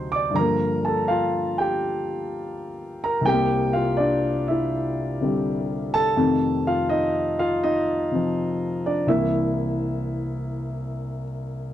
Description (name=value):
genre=solo jazz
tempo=82 BPM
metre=4/4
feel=swing 69% on 8ths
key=unclear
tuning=A4 = 440 Hz
part: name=warm concert grand piano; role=solo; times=0.0-11.7 s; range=C2 to D6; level=-21 LUFS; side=equal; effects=none
room=light reverb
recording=dry, close 1970s-style studio recording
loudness=-21 LUFS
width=side -12 dB against mid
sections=0.0-11.7 A section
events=none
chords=0.3 Gm7; 3.3 C7; 6.2 F7; 9.1 C7